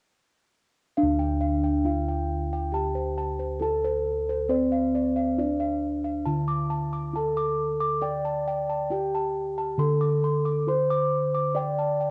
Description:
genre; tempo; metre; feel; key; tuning
Javanese gamelan; 68 BPM; 4/4; straight; D slendro; A4 = 440 Hz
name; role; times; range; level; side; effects
gamelan-type bronze metallophone; melody; 1.0-12.1 s; C4-25c to D5; -29 LUFS; equal; none
gamelan-type bossed gongs; arpeggios; 1.0-12.1 s; C5-25c to D6; -34 LUFS; equal; none
gamelan-type bossed gongs; bass; 1.0-12.1 s; D2 to D5; -31 LUFS; equal; none
room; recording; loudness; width
moderate spring reverb, RT60 2.5 s; home recording on cassette; -26 LUFS; mono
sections
1.0-12.1 A section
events
none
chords
none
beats
| 0.97 1.85 2.73 3.61 | 4.50 5.38 6.26 7.14 | 8.03 8.91 9.79 10.67 | 11.55

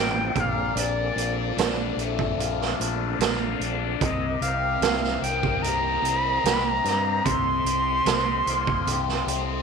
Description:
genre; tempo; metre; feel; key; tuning
psychedelic rock; 74 BPM; 4/4; straight; C dorian; A4 = 440 Hz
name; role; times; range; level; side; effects
bright reedy jazz flute; melody; 0.0-9.6 s; D5 to C6; -25 LUFS; equal; slapback echo
tonewheel organ; sustained chords; 0.0-9.6 s; C4 to Eb5; -35 LUFS; right 9 dB; slow rotary speaker, chorus vibrato
fuzz guitar; riff; 0.0-9.6 s; Bb2 to G4; -29 LUFS; left 14 dB; distortion, phaser
growling fingered electric bass; bass; 0.0-9.6 s; A1 to G2; -30 LUFS; left 1 dB; overdrive
raw garage drum kit; drums; 0.4-9.5 s; hi-hat, kick drum, snare drum; -26 LUFS; right 8 dB; none
room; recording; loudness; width
light reverb, small room ambience; 1960s-style stereo with parts hard left and right; -22 LUFS; side -5 dB against mid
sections
0.0-9.6 A section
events
none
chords
0.3 Bbmaj7; 4.0 Cm7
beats
| 0.76 1.57 2.38 3.19 | 4.01 4.82 5.63 6.44 | 7.26 8.07 8.88

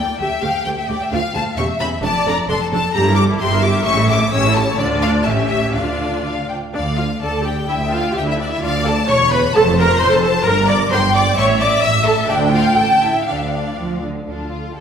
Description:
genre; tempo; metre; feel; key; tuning
quick classical-period movement for string orchestra; 129 BPM; 2/4; rubato; D minor; A4 = 440 Hz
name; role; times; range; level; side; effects
clear symphonic violin section; melody; 0.0-14.8 s; D5 to E6; -21 LUFS; left 4 dB; none
warm symphonic violin section; second line; 0.0-14.8 s; D4 to G5; -21 LUFS; left 2 dB; none
clear symphonic viola section; accompaniment; 0.0-14.8 s; A3 to E5; -20 LUFS; right 1 dB; none
clear symphonic double bass section; bass; 0.0-14.8 s; E1 to D2; -22 LUFS; right 2 dB; none
warm symphonic cello section; bass; 0.0-14.8 s; D2 to F3; -23 LUFS; right 3 dB; none
room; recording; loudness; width
wet concert hall reverb, RT60 2.2 s; recorded in a church or concert hall; -14 LUFS; side -7 dB against mid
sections
0.0-6.8 A section; 6.8-14.3 A section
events
none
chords
0.2 Dmadd11; 1.1 Dm; 1.6 C#dim/E; 2.0 Dm/F; 2.9 Edim/G; 3.8 A7; 4.8 Dm; 5.3 A7; 5.8 Dm; 9.1 C#m7/E; 9.6 Fadd11; 10.5 Gmadd11; 11.4 A5; 12.3 Dm; 12.8 A5; 13.3 Dm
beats
| 0.19 0.65 | 1.11 1.57 | 2.03 2.49 | 2.94 3.40 | 3.85 4.31 | 4.78 5.26 | 5.75 6.26 | 6.75 7.22 | 7.69 8.16 | 8.62 9.09 | 9.55 10.01 | 10.46 10.92 | 11.37 11.83 | 12.29 12.78 | 13.28 13.79 | 14.28 14.76

